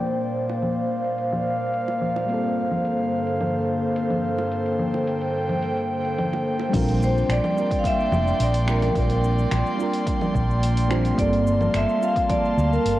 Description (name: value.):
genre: sunset chillout.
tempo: 108 BPM.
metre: 4/4.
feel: straight.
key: unclear.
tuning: A4 = 439 Hz.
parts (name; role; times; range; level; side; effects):
mellow FM electric piano; accompaniment; 0.0-13.0 s; G3 to A5; -29 LUFS; equal; chorus, phaser, auto-pan, tape echo.
airy breathy pad; sustained chords; 0.0-13.0 s; G2 to C6; -24 LUFS; equal; chorus.
deep house drum kit; drums; 0.1-13.0 s; congas, crash cymbal, finger snaps, hi-hat, shaker; -31 LUFS; left 1 dB; overdrive, low-pass filter on hats, cassette tape, low-pass filter on perc, low-pass filter on snare, low-pass filter on cymbals.
bongos; percussion; 0.5-6.7 s; none; -39 LUFS; right 8 dB; none.
woody fretless electric bass; bass; 6.7-13.0 s; F1 to D2; -22 LUFS; equal; none.
electronic kick drum; drums; 6.7-12.4 s; none; -27 LUFS; equal; overdrive, cassette tape.
vibraphone with medium hard mallets; melody; 7.0-13.0 s; Bb4 to F5; -25 LUFS; right 1 dB; cassette tape, analog delay.
room: wet spring reverb, RT60 2.3 s.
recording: home recording on cassette.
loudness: -20 LUFS.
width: side -15 dB against mid.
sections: 0.0-6.7 A section; 6.7-13.0 B section.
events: filter sweep on analog synth pad 0.0-6.7.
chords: 0.0 Bb69; 2.3 Gm11; 6.7 Bb69; 11.2 Gm11.